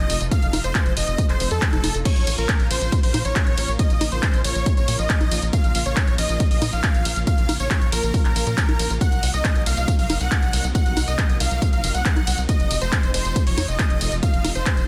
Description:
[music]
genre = uplifting trance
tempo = 138 BPM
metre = 4/4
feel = straight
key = Bb harmonic minor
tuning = A4 = 436 Hz
[part]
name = dense compressed supersaw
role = melody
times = 0.0-14.8 s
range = A4 to Gb5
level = -29 LUFS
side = equal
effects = sidechain pumping, dub echo
[part]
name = analog string pad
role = sustained chords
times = 0.0-14.9 s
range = C3 to F4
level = -35 LUFS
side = equal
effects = ensemble chorus, sidechain pumping
[part]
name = tight sequencer bass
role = bass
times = 0.0-14.9 s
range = F1 to Bb2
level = -27 LUFS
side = equal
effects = sidechain pumping
[part]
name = punchy analog drum machine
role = drums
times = 0.1-14.9 s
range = congas, crash cymbal, handclaps, hi-hat, ride cymbal, tambourine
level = -28 LUFS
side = equal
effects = sidechain pumping on hats, studio reverb, sidechain pumping on perc, sidechain pumping on cymbals
[part]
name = electronic kick drum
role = drums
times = 0.3-14.8 s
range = none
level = -23 LUFS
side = equal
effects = studio reverb
[sound]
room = digital ambience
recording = dense, heavily limited modern master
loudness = -21 LUFS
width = mono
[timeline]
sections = 0.0-14.9 A section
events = none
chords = 0.0 F7; 2.1 Bbm; 9.0 Cm7b5; 12.5 F7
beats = | 0.32 0.75 1.19 1.62 | 2.05 2.49 2.92 3.36 | 3.79 4.23 4.66 5.10 | 5.53 5.97 6.40 6.84 | 7.27 7.71 8.14 8.58 | 9.01 9.45 9.88 10.31 | 10.75 11.19 11.62 12.05 | 12.49 12.92 13.36 13.79 | 14.23 14.66

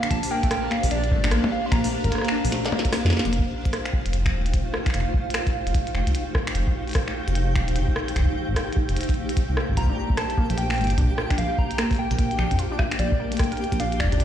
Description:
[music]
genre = IDM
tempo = 149 BPM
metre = 4/4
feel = swing 62% on 16ths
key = Bb major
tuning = A4 = 440 Hz
[part]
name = soft struck synth lead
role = melody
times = 0.0-2.9, 9.8-14.2 s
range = D5 to C6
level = -30 LUFS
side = equal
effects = chorus, dub echo
[part]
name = granular cloud pad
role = sustained chords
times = 0.0-14.2 s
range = A3 to F5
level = -30 LUFS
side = right 1 dB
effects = built-in reverb
[part]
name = glitchy drum kit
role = drums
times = 0.0-14.2 s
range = finger snaps, hi-hat, percussion blips, rim click, snare drum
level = -29 LUFS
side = equal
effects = ping-pong delay
[part]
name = dark detuned saw bass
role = bass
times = 0.1-14.2 s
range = Eb1 to F2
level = -25 LUFS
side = equal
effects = none
[part]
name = electronic kick drum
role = drums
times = 0.1-14.2 s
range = none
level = -24 LUFS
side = equal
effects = none
[part]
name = warbly dusty pluck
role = arpeggios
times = 0.3-3.3, 9.8-14.2 s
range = A3 to Bb4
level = -30 LUFS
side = left 1 dB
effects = chorus, phaser, dub echo
[part]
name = twinkling granular texture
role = texture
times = 4.0-14.2 s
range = G4 to G5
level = -36 LUFS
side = right 1 dB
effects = built-in reverb, sidechain pumping
[sound]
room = light reverb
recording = played on a big sound system in a bare room, stone room reverb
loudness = -21 LUFS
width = side -10 dB against mid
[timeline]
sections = 0.0-3.3 A section; 3.3-14.2 B section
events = drum fill 2.5-3.3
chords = 0.0 Bb69; 3.3 F7; 9.8 Bb69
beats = | 0.11 0.51 0.91 1.31 | 1.72 2.12 2.52 2.93 | 3.33 3.73 4.13 4.54 | 4.94 5.34 5.75 6.15 | 6.55 6.95 7.36 7.76 | 8.16 8.56 8.97 9.37 | 9.77 10.17 10.58 10.98 | 11.38 11.79 12.19 12.59 | 12.99 13.40 13.80 14.20

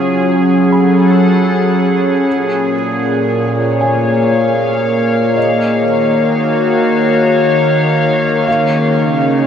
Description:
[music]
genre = ambient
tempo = 58 BPM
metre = 3/4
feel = straight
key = Eb minor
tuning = A4 = 435 Hz
[part]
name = evolving wavetable pad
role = sustained chords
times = 0.0-9.5 s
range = Bb2 to Ab5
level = -11 LUFS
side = equal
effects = chorus, built-in reverb, shimmer reverb
[part]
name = felt-muted upright piano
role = arpeggios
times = 0.0-9.5 s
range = Eb5 to Db6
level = -25 LUFS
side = equal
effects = tape echo, shimmer reverb
[part]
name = bowed-like drone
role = drone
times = 6.9-9.5 s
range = Eb3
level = -19 LUFS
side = right 1 dB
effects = built-in reverb, phaser
[sound]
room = wet huge ambient reverb, RT60 7.7 s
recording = nothing above 10.5 kHz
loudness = -11 LUFS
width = side -8 dB against mid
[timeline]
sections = 0.0-9.5 A section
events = fade-in on felt piano 0.0-9.5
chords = 0.0 Gbmadd9; 2.3 Bbm7; 5.4 Ebm7; 8.5 Db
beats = 0.20 1.23 | 2.27 3.30 4.34 | 5.37 6.41 7.44 | 8.47

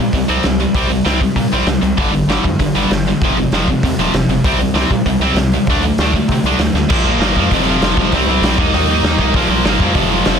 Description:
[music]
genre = punk rock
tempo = 195 BPM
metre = 4/4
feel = straight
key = unclear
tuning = A4 = 440 Hz
[part]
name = sludgy distorted guitar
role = riff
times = 0.0-10.4 s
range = F2 to Eb4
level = -15 LUFS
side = equal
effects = overdrive
[part]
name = gritty driven synth bass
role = bass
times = 0.0-10.4 s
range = Eb1 to C3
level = -20 LUFS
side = equal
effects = none
[part]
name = raw garage drum kit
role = drums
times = 0.1-10.3 s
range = crash cymbal, hi-hat, kick drum, snare drum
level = -17 LUFS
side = equal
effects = none
[sound]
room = little or no reverb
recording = dense, heavily limited modern master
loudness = -12 LUFS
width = side -7 dB against mid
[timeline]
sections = 0.0-6.9 A section; 6.9-10.4 B section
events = drum fill 6.8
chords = 0.0 C5; 2.0 G5; 3.2 F5; 4.4 C5; 5.7 D5; 6.9 Bb5; 7.5 F5; 8.1 C5; 8.6 Eb5; 9.3 Bb5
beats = 0.14 0.45 | 0.76 1.06 1.37 1.68 | 1.99 2.29 2.60 2.91 | 3.22 3.52 3.83 4.14 | 4.45 4.76 5.06 5.37 | 5.68 5.99 6.29 6.60 | 6.91 7.21 7.52 7.82 | 8.13 8.44 8.74 9.04 | 9.35 9.65 9.96 10.27

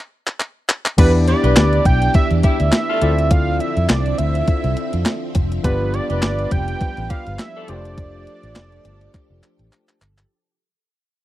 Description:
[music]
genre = early-eighties boogie funk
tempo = 103 BPM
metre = 4/4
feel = swing 56% on 16ths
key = unclear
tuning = A4 = 440 Hz
[part]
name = crisp 8-bit digital drum machine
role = drums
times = 0.3-10.3 s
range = crash cymbal, handclaps, hi-hat, kick drum, snare drum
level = -17 LUFS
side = equal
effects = overdrive
[part]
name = fat analog lead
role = melody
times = 1.0-10.0 s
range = B4 to G5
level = -23 LUFS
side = right 3 dB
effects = slapback echo
[part]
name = barky tine electric piano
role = accompaniment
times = 1.0-10.0 s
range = A3 to D5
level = -24 LUFS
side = left 3 dB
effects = overdrive
[part]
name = string machine, violins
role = sustained chords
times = 1.0-10.3 s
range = D3 to E5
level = -29 LUFS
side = equal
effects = ensemble chorus
[part]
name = vintage muted fingered electric bass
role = bass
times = 1.0-10.2 s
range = F1 to F2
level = -19 LUFS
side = equal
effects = none
[part]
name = mellow horn section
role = second line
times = 1.3-7.8 s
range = A3 to D5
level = -26 LUFS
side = left 5 dB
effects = none
[sound]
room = little or no reverb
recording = dry, close 1970s-style studio recording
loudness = -15 LUFS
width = side -15 dB against mid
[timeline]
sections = 1.0-10.3 A section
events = break 0.0-1.0; drum fill 0.0-1.0, 9.1-10.3; fade-out 1.0-10.3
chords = 0.0 N.C.; 1.0 Em7; 3.0 Dm9; 5.6 G7; 7.7 F69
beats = 0.40 | 0.98 1.56 2.15 2.73 | 3.31 3.90 4.48 5.06 | 5.64 6.22 6.81 7.39 | 7.97 8.55 9.14 9.72

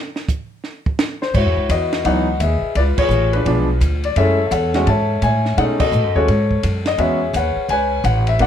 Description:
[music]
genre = jazz piano trio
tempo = 170 BPM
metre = 4/4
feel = swing 64% on 8ths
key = C# minor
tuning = A4 = 440 Hz
[part]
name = compact cocktail drum kit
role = drums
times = 0.2-8.5 s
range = crash cymbal, hi-hat, kick drum, ride cymbal, snare drum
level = -25 LUFS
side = right 2 dB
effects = none
[part]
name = warm concert grand piano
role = melody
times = 1.2-8.5 s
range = E3 to A5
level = -18 LUFS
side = left 2 dB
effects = plate reverb
[part]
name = upright bass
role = bass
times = 1.3-8.5 s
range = G#1 to B2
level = -18 LUFS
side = equal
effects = none
[sound]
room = light reverb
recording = none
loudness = -15 LUFS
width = side -9 dB against mid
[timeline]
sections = 0.0-1.3 A section; 1.3-8.5 B section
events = grand piano solo 0.0-1.3; drum solo 0.0-1.3; band accent 2.9, 5.8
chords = 0.0 N.C.; 1.3 C#m11; 2.8 C#7b9; 4.2 F#m7; 5.6 B13; 7.0 E6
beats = 0.29 0.64 1.00 | 1.35 1.70 2.05 2.41 | 2.76 3.11 3.46 3.82 | 4.17 4.52 4.88 5.23 | 5.58 5.93 6.28 6.64 | 6.99 7.34 7.69 8.04 | 8.39

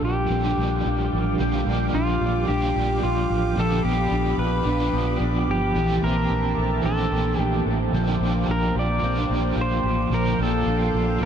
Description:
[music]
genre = dream pop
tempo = 110 BPM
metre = 4/4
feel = straight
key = Bb major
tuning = A4 = 440 Hz
[part]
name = pedal steel guitar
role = melody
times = 0.0-11.3 s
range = F4 to D5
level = -26 LUFS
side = equal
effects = ping-pong delay
[part]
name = overdriven semi-hollow guitar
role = accompaniment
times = 0.0-11.3 s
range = Bb2 to G4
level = -28 LUFS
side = right 3 dB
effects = tremolo, analog chorus
[part]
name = phased analog pad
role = sustained chords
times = 0.0-11.3 s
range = G4 to D6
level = -33 LUFS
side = right 1 dB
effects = phaser, chorus
[part]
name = mellow electric guitar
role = arpeggios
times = 0.0-11.3 s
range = E3 to A4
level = -26 LUFS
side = left 1 dB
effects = lush chorus, ping-pong delay
[part]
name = vintage muted fingered electric bass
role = bass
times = 0.0-11.3 s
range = G1 to Bb1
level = -25 LUFS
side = equal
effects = none
[part]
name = vibraphone with soft mallets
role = texture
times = 8.3-11.3 s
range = F5 to A5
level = -40 LUFS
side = left 1 dB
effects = none
[sound]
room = moderate huge ambient reverb, RT60 9.1 s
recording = dark, warm production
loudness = -20 LUFS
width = side -8 dB against mid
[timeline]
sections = 0.0-11.3 A section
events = none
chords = 0.0 Bb6; 3.6 G7/Bb; 5.8 C13/Bb; 7.9 Bb6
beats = 0.30 0.84 | 1.39 1.94 2.48 3.03 | 3.57 4.12 4.66 5.21 | 5.75 6.30 6.84 7.39 | 7.93 8.48 9.03 9.57 | 10.12 10.66 11.21

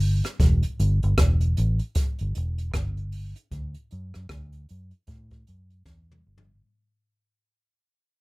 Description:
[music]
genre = roots reggae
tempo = 77 BPM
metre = 4/4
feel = swing 60% on 16ths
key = E minor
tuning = A4 = 440 Hz
[part]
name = vintage muted fingered electric bass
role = bass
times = 0.0-6.6 s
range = E1 to A2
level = -24 LUFS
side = equal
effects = none
[part]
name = jazz brush drum kit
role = drums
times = 0.0-6.6 s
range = hi-hat, kick drum, rim click, snare drum, toms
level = -25 LUFS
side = equal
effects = none
[sound]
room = little or no reverb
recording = rough home demo mix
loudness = -21 LUFS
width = side -25 dB against mid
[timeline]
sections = 0.0-6.6 A section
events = fade-out 0.0-6.6; drum fill 5.9-6.6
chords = none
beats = | 0.39 1.17 1.95 2.73 | 3.52 4.29 5.08 5.86

